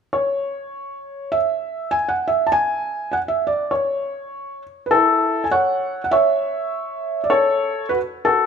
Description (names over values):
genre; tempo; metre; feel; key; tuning
hawaiian; 101 BPM; 4/4; swing 59% on 8ths; unclear; A4 = 440 Hz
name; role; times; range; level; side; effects
felt-muted upright piano; solo; 0.1-8.5 s; E4 to A5; -18 LUFS; equal; none
room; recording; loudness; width
moderate recital hall reverb, RT60 1.7 s; minimal, uncompressed stereo recording; -18 LUFS; side -6 dB against mid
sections
0.1-4.9 A section; 4.9-8.5 B section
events
none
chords
0.1 N.C.; 4.9 Esus2; 7.3 F#m